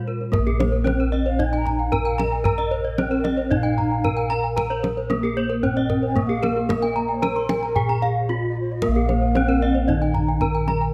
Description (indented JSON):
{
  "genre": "Balinese gamelan",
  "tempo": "113 BPM",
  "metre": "4/4",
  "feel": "straight",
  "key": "Bb slendro",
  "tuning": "A4 = 440 Hz",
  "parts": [
    { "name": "gamelan-type bronze metallophone", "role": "melody", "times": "0.0-10.9 s", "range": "Bb3 to Bb4", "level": "-27 LUFS", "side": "equal", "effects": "none" },
    { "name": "mellow bansuri", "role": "second line", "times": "0.0-10.4 s", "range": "Bb4 to Bb5", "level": "-34 LUFS", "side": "equal", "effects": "none" },
    { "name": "gamelan-type bronze metallophone", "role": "accompaniment", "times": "0.0-0.3, 8.8-10.9 s", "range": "Eb3-35c to Bb3", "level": "-30 LUFS", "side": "equal", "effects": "none" },
    { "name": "gamelan-type bronze metallophone", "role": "arpeggios", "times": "0.0-10.8 s", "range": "Ab4-45c to C6+30c", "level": "-32 LUFS", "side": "equal", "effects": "none" },
    { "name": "gamelan-type bossed gongs", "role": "bass", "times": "0.0-10.9 s", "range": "Bb1 to Bb4", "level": "-27 LUFS", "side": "equal", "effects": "none" },
    { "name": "kendang", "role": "percussion", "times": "0.1-10.8 s", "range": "none", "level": "-30 LUFS", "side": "equal", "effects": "none" },
    { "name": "gamelan-type bronze metallophone", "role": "arpeggios", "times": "0.2-10.9 s", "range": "Ab4-45c to Bb5", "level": "-30 LUFS", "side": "equal", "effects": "none" }
  ],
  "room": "light reverb",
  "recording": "close, detailed microphones",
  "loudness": "-22 LUFS",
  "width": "mono",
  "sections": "0.3-10.9 A section",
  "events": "break 8.0-8.8; drum fill 8.2-8.8",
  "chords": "none",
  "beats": "| 0.33 0.86 1.39 1.92 | 2.45 2.98 3.51 4.04 | 4.58 5.11 5.64 6.17 | 6.70 7.23 7.76 8.29 | 8.82 9.35 9.88 10.42"
}